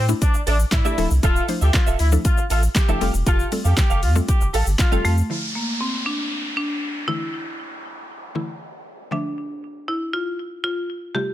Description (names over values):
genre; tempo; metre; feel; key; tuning
dance-pop; 118 BPM; 4/4; straight; D minor; A4 = 440 Hz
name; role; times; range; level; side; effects
warm horn section; melody; 0.0-5.2 s; D4 to A4; -26 LUFS; left 2 dB; ping-pong delay
warm sub bass; bass; 0.0-5.2 s; D1 to A2; -19 LUFS; equal; sidechain pumping
mallet-like synth pluck; accompaniment; 0.1-11.3 s; C3 to E5; -26 LUFS; left 3 dB; chorus, sidechain pumping
direct-recorded clean electric guitar; riff; 0.1-5.2 s; F4 to F5; -29 LUFS; right 7 dB; ensemble chorus
house drum kit; drums; 0.1-5.3 s; handclaps, hi-hat, kick drum, shaker, snare drum; -20 LUFS; equal; none
marimba with hard mallets; melody; 5.0-11.3 s; A3 to G4; -25 LUFS; equal; ping-pong delay
downlifter; sound effects; 5.3-9.4 s; none; -30 LUFS; equal; none
room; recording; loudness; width
little or no reverb; none; -19 LUFS; side -13 dB against mid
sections
0.0-5.3 A section; 5.3-11.3 B section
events
drop 0.0-5.3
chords
0.0 Asus4; 1.0 Dmadd9; 3.0 Fadd9; 5.3 Dmadd9; 7.1 Asus4; 9.1 Dmadd9